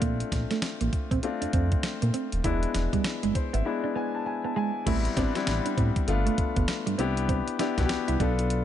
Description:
R&B, new jack swing; 99 BPM; 4/4; swing 61% on 16ths; A minor from 4.9 s; A4 = 440 Hz
warm concert grand piano; accompaniment; 0.0-8.6 s; G3 to A5; -29 LUFS; left 5 dB
mellow electric guitar; riff; 0.0-8.3 s; G3 to E4; -32 LUFS; right 7 dB; lush chorus
smooth synth bass; bass; 0.0-8.6 s; D#1 to Bb2; -28 LUFS; equal
clean 12-bit digital drum machine; drums; 0.0-8.6 s; crash cymbal, hi-hat, kick drum, snare drum; -30 LUFS; equal
little or no reverb; nothing above 10.8 kHz; -25 LUFS; side -11 dB against mid
0.0-4.9 A section; 4.9-8.6 B section
grand piano fill 3.0-4.9; break 3.7-4.9
0.0 Bbmaj7; 2.4 E7; 4.9 Am7; 6.1 G7; 7.0 Cmaj7
| 0.02 0.62 1.23 1.84 | 2.44 3.05 3.65 4.26 | 4.87 5.47 6.08 6.69 | 7.29 7.90 8.50

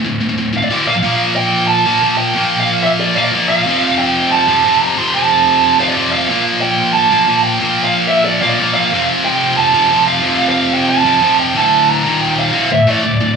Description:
metal; 183 BPM; 4/4; straight; A4 = 439 Hz
high-gain distorted guitar; riff; 0.0-13.3 s; D2 to Bb3; -14 LUFS; left 1 dB; distortion
bluesy overdriven lead guitar; melody; 0.6-13.3 s; D5 to C6; -14 LUFS; right 4 dB; distortion, tape echo
light reverb; studio ambience; -11 LUFS; side -5 dB against mid
0.0-1.0 A section; 1.0-11.6 B section; 11.6-13.4 C section
half time 1.0-11.6
0.0 D5; 0.9 Bb5; 3.7 F; 6.3 Bb5; 8.9 F; 11.6 D5; 12.1 Eb5; 12.5 Dm
0.06 0.39 0.72 | 1.05 1.38 1.70 2.03 | 2.36 2.69 3.01 3.34 | 3.67 4.00 4.33 4.65 | 4.98 5.31 5.64 5.97 | 6.30 6.62 6.95 7.28 | 7.61 7.94 8.27 8.60 | 8.93 9.26 9.59 9.91 | 10.24 10.57 10.90 11.23 | 11.56 11.89 12.22 12.54 | 12.87 13.20

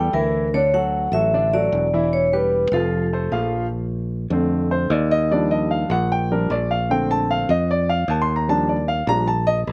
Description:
Afro-Cuban jazz; 151 BPM; 4/4; straight; Bb major from 3.7 s; A4 = 440 Hz
vibraphone with medium hard mallets; melody; 0.0-3.5 s; A4 to G5; -22 LUFS; equal
warm baby grand piano; accompaniment; 0.0-9.6 s; D3 to C6; -24 LUFS; equal; slapback echo
fingered electric bass; bass; 0.0-9.7 s; E1 to F2; -25 LUFS; equal
little or no reverb; recorded outdoors, with no room sound; -20 LUFS; mono
0.0-3.7 A section; 3.7-9.7 B section
grand piano solo 3.7-9.7
0.0 A5; 0.5 Dadd9; 2.1 Em; 2.9 F; 3.7 Bbmaj7; 5.3 Ebmaj9; 6.9 Bbmaj7; 8.5 Ebmaj9
0.14 | 0.54 0.94 1.33 1.73 | 2.13 2.53 2.92 3.32 | 3.72 4.12 4.52 4.91 | 5.31 5.71 6.11 6.50 | 6.90 7.30 7.69 8.09 | 8.49 8.88 9.28 9.68

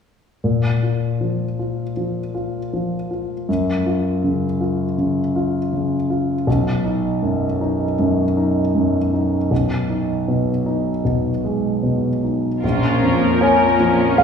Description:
cinematic; 79 BPM; 4/4; rubato; A4 = 440 Hz
warm grand piano; accompaniment; 0.4-14.2 s; A#1 to G#5; -18 LUFS; left 1 dB
muted symphonic violin section; second line; 12.6-14.2 s; C#4 to A#4; -20 LUFS; left 4 dB
muted studio viola section; accompaniment; 12.6-14.2 s; E#3 to E#4; -22 LUFS; right 1 dB
muted studio cello section; bass; 12.6-14.2 s; A#2; -22 LUFS; right 2 dB
wet scoring stage reverb, RT60 1.6 s; heard from further back in the room, small room ambience; -17 LUFS; side -6 dB against mid
0.4-12.6 A section; 12.6-14.2 B section
0.4 A#5; 3.5 F#5; 6.5 B; 9.5 G#m/B; 12.6 A#m7
| 0.43 1.20 1.96 2.72 | 3.48 4.22 4.97 5.72 | 6.47 7.22 7.98 8.74 | 9.51 10.27 11.04 11.83 | 12.63 13.41 14.18

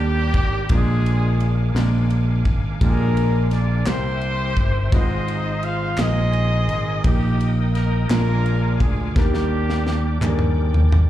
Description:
slow gospel; 57 BPM (dotted quarters); 6/8; straight; Eb major; A4 = 440 Hz
clear horn section; melody; 0.0-10.6 s; G3 to F5; -26 LUFS; left 1 dB; slapback echo
warm baby grand piano; accompaniment; 0.0-11.1 s; Ab2 to C5; -28 LUFS; left 2 dB; slapback echo
bright tonewheel organ; sustained chords; 0.0-11.1 s; Ab4 to Eb6; -34 LUFS; left 1 dB; fast rotary speaker, overdrive, chorus vibrato
fingered electric bass; bass; 0.0-11.1 s; G1 to Eb2; -20 LUFS; equal
modern studio drum kit; drums; 0.3-11.1 s; kick drum, ride cymbal, snare drum, toms; -22 LUFS; equal
group handclap; percussion; 3.9-10.6 s; -34 LUFS; left 2 dB
studio reverb; live gig heard through the venue's PA, club reverb; -17 LUFS; side -13 dB against mid
0.0-11.1 A section
drum fill 9.2-11.1
0.0 Ebmaj7; 0.7 Bb7; 3.9 C7; 4.9 Fm7/Ab; 6.0 Bb9sus4; 7.0 Eb/Bb; 8.1 Bb7; 9.2 Ebmaj7
| 0.69 1.75 | 2.81 3.87 | 4.92 5.98 | 7.04 8.10 | 9.16 10.22

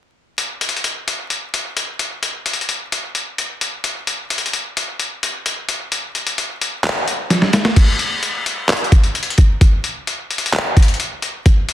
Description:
hip hop; 130 BPM; 4/4; half-time
boom bap sampler-style drum kit; drums; 0.4-11.7 s; crash cymbal, handclaps, hi-hat, kick drum, snare drum; -16 LUFS; equal; soft clipping on snare
little or no reverb; dense, heavily limited modern master, vinyl crackle; -16 LUFS; side -13 dB against mid
0.4-7.8 A section; 7.8-11.7 B section
drum fill 7.3-7.8
| 0.38 0.84 1.30 1.77 | 2.23 2.69 3.15 3.61 | 4.07 4.54 5.00 5.46 | 5.92 6.38 6.84 7.30 | 7.77 8.23 8.69 9.15 | 9.61 10.07 10.54 11.00 | 11.46

